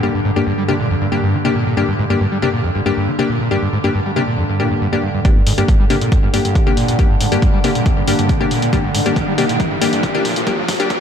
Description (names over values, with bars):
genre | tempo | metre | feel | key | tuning
driving peak-time techno | 138 BPM | 4/4 | straight | G minor | A4 = 440 Hz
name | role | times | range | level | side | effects
screaming distorted acid line | riff | 0.0-11.0 s | F2 to G3 | -20 LUFS | equal | distortion, wide subtle chorus, sidechain pumping, tape echo
wavetable chord stab | stabs | 0.0-10.9 s | Bb3 to G4 | -19 LUFS | left 3 dB | sidechain pumping, tape echo
overtone-sweeping drone | drone | 0.0-11.0 s | G2 to D3 | -22 LUFS | right 1 dB | chorus, built-in reverb, sidechain pumping
electronic hi-hat | drums | 5.2-11.0 s | none | -25 LUFS | left 2 dB | sidechain pumping on hats
electronic kick drum | drums | 5.2-11.0 s | none | -16 LUFS | equal | none
riser | sound effects | 7.2-11.0 s | none | -25 LUFS | right 1 dB | none
room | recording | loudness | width
moderate lush hall reverb, RT60 2.2 s | dark, warm production, high-pass filter | -14 LUFS | side -8 dB against mid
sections
0.0-5.2 A section; 5.2-11.0 B section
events
build-up 5.2-11.0; filter sweep on acid bass 5.2-11.0; filter sweep 5.2-11.0; riser 7.2-11.0; drum fill 8.7-11.0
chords
0.0 Gm